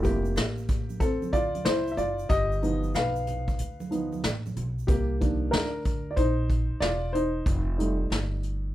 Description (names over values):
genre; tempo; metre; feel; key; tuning
hip hop, jazz-hop; 93 BPM; 4/4; swing 64% on 16ths; C dorian; A4 = 439 Hz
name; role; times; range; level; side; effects
dark upright piano; accompaniment; 0.0-8.7 s; Eb3 to F5; -28 LUFS; equal; none
upright bass; bass; 0.0-8.7 s; E1 to D2; -30 LUFS; equal; none
vintage brush drum kit; drums; 0.0-8.6 s; hi-hat, kick drum, snare drum; -28 LUFS; equal; none
congas and tube shaker; percussion; 0.0-4.9 s; none; -41 LUFS; right 4 dB; none
room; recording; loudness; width
light reverb; band playing live in one room; -25 LUFS; side -14 dB against mid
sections
0.0-4.9 A section; 4.9-8.7 B section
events
upright piano solo 0.0-4.9, 4.9-8.7; break 3.6-4.9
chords
0.0 Fmaj9; 2.3 G7b13; 4.9 Cm11; 7.5 F9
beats
0.37 1.01 1.66 | 2.30 2.95 3.59 4.24 | 4.88 5.53 6.17 6.82 | 7.46 8.11